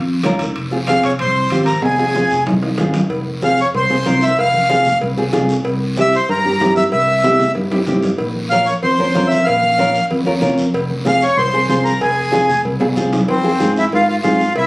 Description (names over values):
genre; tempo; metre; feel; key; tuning
latin, cumbia; 189 BPM; 4/4; straight; F harmonic minor; A4 = 440 Hz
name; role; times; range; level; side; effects
fingered electric bass; bass; 0.0-14.7 s; F1 to Ab2; -20 LUFS; equal; none
congas; percussion; 0.1-14.4 s; none; -27 LUFS; left 1 dB; none
nylon-string guitar; accompaniment; 0.2-14.4 s; C4 to Bb4; -19 LUFS; equal; none
guiro; percussion; 0.2-14.7 s; none; -32 LUFS; equal; none
timbales and cowbell; percussion; 0.2-14.7 s; none; -22 LUFS; equal; none
accordion; melody; 0.9-14.7 s; C4 to F5; -15 LUFS; equal; none
room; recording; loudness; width
moderate large studio reverb, RT60 1.1 s; recorded on a phone in the room, club ambience, compression; -13 LUFS; side -23 dB against mid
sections
0.0-3.1 A section; 3.1-13.3 B section; 13.3-14.7 C section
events
drum fill 1.8-3.1, 7.2-8.2, 12.8-13.3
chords
0.0 Bbm; 0.6 Fm; 5.7 C7; 8.2 Bbm; 10.7 Fm